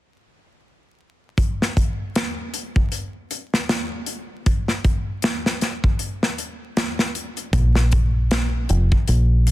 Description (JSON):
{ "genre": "trip hop", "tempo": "78 BPM", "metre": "4/4", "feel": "swing 57% on 16ths", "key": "unclear", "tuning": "A4 = 444 Hz", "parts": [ { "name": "modern studio drum kit", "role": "drums", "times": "1.4-9.5 s", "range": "hi-hat, kick drum, snare drum", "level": "-21 LUFS", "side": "equal", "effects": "none" }, { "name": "deep dub fingered electric bass", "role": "bass", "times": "7.5-9.5 s", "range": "F1 to Bb1", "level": "-17 LUFS", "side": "equal", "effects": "tube saturation" } ], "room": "little or no reverb", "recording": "dense, heavily limited modern master, vinyl crackle", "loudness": "-19 LUFS", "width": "side -16 dB against mid", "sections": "1.4-9.5 A section", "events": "none", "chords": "none" }